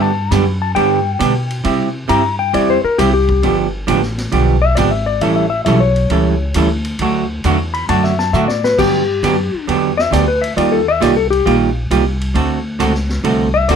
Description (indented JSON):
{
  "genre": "country, western swing",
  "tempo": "135 BPM",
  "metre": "4/4",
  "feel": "swing 68% on 8ths",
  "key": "G major",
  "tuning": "A4 = 444 Hz",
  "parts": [
    { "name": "clean lap steel guitar", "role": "second line", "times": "0.0-13.8 s", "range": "G4 to B5", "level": "-17 LUFS", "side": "left 7 dB", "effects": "none" },
    { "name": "vintage hollow-body jazz guitar", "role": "accompaniment", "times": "0.0-13.8 s", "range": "C3 to A4", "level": "-16 LUFS", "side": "right 5 dB", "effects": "none" },
    { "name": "upright bass", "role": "bass", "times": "0.0-13.8 s", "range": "G1 to C3", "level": "-18 LUFS", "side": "equal", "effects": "none" },
    { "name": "vintage drum kit", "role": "drums", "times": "0.3-13.8 s", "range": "crash cymbal, hi-hat, kick drum, ride cymbal, snare drum", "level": "-27 LUFS", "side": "equal", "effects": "none" }
  ],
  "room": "moderate club ambience, RT60 0.5 s",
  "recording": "none",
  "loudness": "-13 LUFS",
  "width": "side -7 dB against mid",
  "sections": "0.0-13.8 A section",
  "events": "electric slide guitar solo 0.0-13.8; drum fill 8.3-8.8",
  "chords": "0.0 G; 1.6 C; 3.4 G7; 5.2 A7; 7.0 D; 8.8 Gmaj7; 10.6 Ebadd9; 12.3 D7",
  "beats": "0.31 0.76 1.21 | 1.65 2.10 2.54 2.99 | 3.43 3.88 4.32 4.77 | 5.21 5.66 6.10 6.55 | 7.00 7.44 7.89 8.33 | 8.78 9.23 9.67 10.12 | 10.56 11.01 11.46 11.90 | 12.35 12.80 13.24 13.69"
}